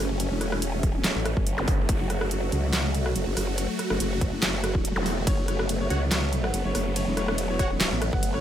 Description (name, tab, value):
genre	heavy wobble dubstep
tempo	142 BPM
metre	4/4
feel	swing 53% on 16ths, half-time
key	F# phrygian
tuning	A4 = 440 Hz
part	supersaw chords	sustained chords	0.0-8.4 s	F#3 to F#4	-30 LUFS	right 1 dB	phaser, sidechain pumping
part	growl bass	bass	0.0-8.4 s	E1 to C#2	-28 LUFS	equal	chorus, overdrive
part	dubstep drum kit	drums	0.2-8.4 s	handclaps, hi-hat, ride cymbal, rim click, snare drum	-28 LUFS	equal	overdrive
part	electronic kick drum	drums	0.8-8.2 s	none	-26 LUFS	equal	overdrive
part	zap	sound effects	1.6-1.7, 5.0-5.1 s	none	-33 LUFS	equal	none
part	clear baby grand piano	melody	5.3-8.4 s	C#5 to F#5	-34 LUFS	left 2 dB	tape echo
part	supersaw stab	stabs	5.9-7.7 s	F#4 to F#5	-34 LUFS	right 2 dB	none
room	little or no reverb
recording	none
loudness	-23 LUFS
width	side -10 dB against mid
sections	0.0-8.4 A section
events	kick drops out 4.8-5.3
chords	0.0 F#m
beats	| 0.20 0.62 1.04 1.47 | 1.89 2.31 2.73 3.16 | 3.58 4.00 4.42 4.85 | 5.27 5.69 6.12 6.54 | 6.96 7.38 7.80 8.23